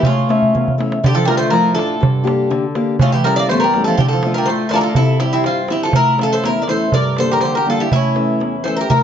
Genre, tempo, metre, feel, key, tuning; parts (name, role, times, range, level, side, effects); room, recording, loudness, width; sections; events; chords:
greek folk, Greek bouzouki band; 122 BPM; 2/4; straight; A4 = 438 Hz
Greek bouzouki; melody; 0.0-9.0 s; E4 to D5; -18 LUFS; left 1 dB
Greek bouzouki; second line; 0.0-9.0 s; C#3 to Bb4; -22 LUFS; right 4 dB
picked acoustic archtop guitar; accompaniment; 0.0-9.0 s; E2 to E5; -18 LUFS; left 3 dB
darbuka; percussion; 0.0-9.0 s; -18 LUFS; right 2 dB
moderate studio reverb, RT60 0.6 s; dark, warm production, nothing above 7.6 kHz; -13 LUFS; side -8 dB against mid
0.0-5.0 A section; 5.0-9.0 B section
drum fill 0.4-1.0
0.0 A; 1.0 Dm; 2.0 Gm; 3.0 A7; 4.0 Dm; 5.0 C; 5.9 A; 6.9 Gm; 7.9 A